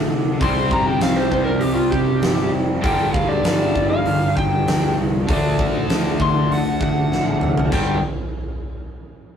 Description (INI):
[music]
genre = blues rock power trio and southern rock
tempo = 98 BPM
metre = 4/4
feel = straight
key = unclear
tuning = A4 = 440 Hz
[part]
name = raw garage guitar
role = riff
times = 0.0-8.0 s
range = G2 to D4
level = -21 LUFS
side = left 1 dB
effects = overdrive
[part]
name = fuzz fingered electric bass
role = bass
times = 0.0-8.0 s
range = F1 to D3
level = -26 LUFS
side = equal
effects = overdrive
[part]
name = overdriven slide guitar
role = melody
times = 0.4-8.0 s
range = F4 to C6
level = -22 LUFS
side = equal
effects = none
[part]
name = huge arena drum kit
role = drums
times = 0.4-7.9 s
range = crash cymbal, hi-hat, kick drum, snare drum, toms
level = -22 LUFS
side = right 1 dB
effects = none
[sound]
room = moderate studio reverb, RT60 0.6 s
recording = rough rehearsal-room recording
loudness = -16 LUFS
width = side -8 dB against mid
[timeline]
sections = 0.0-7.7 A section; 7.7-9.4 B section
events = electric slide guitar solo 0.0-7.7; drum fill 7.1-7.7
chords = 0.4 C5; 2.8 G5; 5.3 D; 7.7 G5